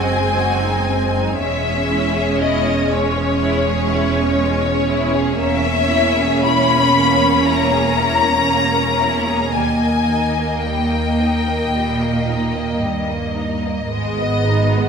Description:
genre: classical, slow romantic movement for string orchestra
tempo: 52-61 BPM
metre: 4/4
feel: rubato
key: unclear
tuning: A4 = 442 Hz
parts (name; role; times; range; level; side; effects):
- warm symphonic violin section; melody; 0.0-14.9 s; C#5 to B5; -20 LUFS; left 5 dB; none
- warm symphonic violin section; second line; 0.0-14.9 s; G3 to D#5; -23 LUFS; left 2 dB; none
- rich symphonic viola section; accompaniment; 0.0-14.9 s; G#3 to C#4; -21 LUFS; right 3 dB; none
- clear chamber double bass section; bass; 0.0-14.9 s; E1 to D#2; -24 LUFS; right 3 dB; none
- rich symphonic cello section; bass; 0.0-14.9 s; D#2 to A#2; -24 LUFS; right 2 dB; none
room: wet recital hall reverb, RT60 1.4 s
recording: recorded in a church or concert hall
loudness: -15 LUFS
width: side -6 dB against mid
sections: 0.0-14.9 A section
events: none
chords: 0.0 G#7/F#; 1.4 C#m/E; 5.4 A#dim/E; 9.5 D#; 13.9 G#m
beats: 0.39 | 1.40 2.40 3.40 4.40 | 5.41 6.46 7.48 8.50 | 9.54 10.61 11.71 12.80 | 13.89

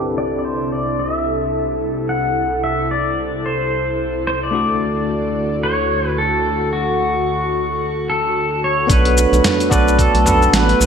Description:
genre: sunset chillout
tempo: 110 BPM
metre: 4/4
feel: swing 58% on 16ths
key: B minor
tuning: A4 = 439 Hz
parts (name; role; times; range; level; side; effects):
- pedal steel guitar; melody; 0.0-10.9 s; F#4 to F#5; -19 LUFS; equal; lush chorus, ping-pong delay, shimmer reverb
- bell-like tine electric piano; accompaniment; 0.0-10.9 s; A3 to D5; -23 LUFS; moving between left 4 dB and right 3 dB; medium stereo tremolo, auto-pan, low-pass filter, shimmer reverb
- airy breathy pad; sustained chords; 0.0-10.9 s; C2 to A4; -22 LUFS; equal; chorus
- round analog bass; bass; 8.9-10.9 s; A1 to B1; -16 LUFS; right 1 dB; none
- dusty soul sampler-style drum kit; drums; 8.9-10.9 s; cabasa, hi-hat, snare drum, toms; -19 LUFS; equal; gated reverb
- electronic kick drum; drums; 8.9-10.4 s; none; -19 LUFS; right 1 dB; none
room: wet lush hall reverb, RT60 1.7 s, digital ambience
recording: bright 1980s-style digital production, low-pass filter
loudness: -15 LUFS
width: side -7 dB against mid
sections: 0.0-8.9 A section; 8.9-10.9 B section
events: filter sweep on tine electric piano 0.0-8.9; filter sweep 0.0-8.9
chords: 0.0 C6; 4.5 D; 8.9 Bm7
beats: | 0.17 0.71 1.26 1.80 | 2.35 2.90 3.44 3.99 | 4.53 5.08 5.62 6.17 | 6.71 7.26 7.80 8.35 | 8.89 9.44 9.99 10.53

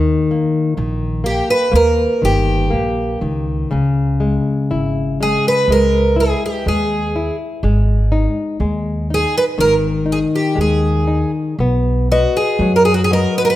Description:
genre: fado-style ballad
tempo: 61 BPM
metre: 2/4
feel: rubato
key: unclear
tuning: A4 = 440 Hz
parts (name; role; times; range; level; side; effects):
- nylon-string guitar; accompaniment; 0.0-13.6 s; C#3 to D#5; -18 LUFS; left 3 dB; none
- upright bass; bass; 0.0-13.2 s; G1 to F#2; -18 LUFS; right 1 dB; none
- picked twelve-string acoustic guitar; melody; 1.3-13.6 s; F#4 to B4; -16 LUFS; right 2 dB; none
room: moderate recital hall reverb, RT60 1.6 s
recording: none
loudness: -14 LUFS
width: side -14 dB against mid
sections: 0.0-11.6 A section; 11.6-13.6 B section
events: none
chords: 0.0 D#7; 3.7 C#m; 7.6 G#5; 11.6 B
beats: 0.76 | 1.73 2.71 | 3.71 4.70 | 5.68 6.66 | 7.62 8.59 | 9.57 10.56 | 11.57 12.59

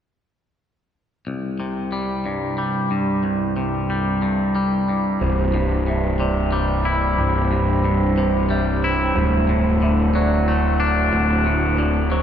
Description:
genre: rock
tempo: 61 BPM (dotted quarters)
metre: 6/8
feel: straight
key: C major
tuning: A4 = 440 Hz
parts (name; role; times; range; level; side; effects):
- warbly tape-like pad; sustained chords; 1.9-12.2 s; C2 to G5; -25 LUFS; right 2 dB; chorus, built-in reverb, phaser
- twangy electric guitar; arpeggios; 1.3-12.2 s; C2 to E4; -21 LUFS; left 2 dB; spring reverb
- felt-muted upright piano; arpeggios; 5.2-12.2 s; C5 to E5; -29 LUFS; right 6 dB; none
- fuzz picked electric bass; bass; 5.2-12.2 s; C1 to D1; -20 LUFS; equal; overdrive
room: wet cathedral reverb, RT60 5.0 s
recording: recorded in a church or concert hall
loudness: -18 LUFS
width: side -9 dB against mid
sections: 1.3-5.2 A section; 5.2-12.2 B section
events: none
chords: 1.3 C; 9.2 D7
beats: | 1.26 2.25 | 3.24 4.23 | 5.22 6.20 | 7.19 8.18 | 9.16 10.14 | 11.13 12.11

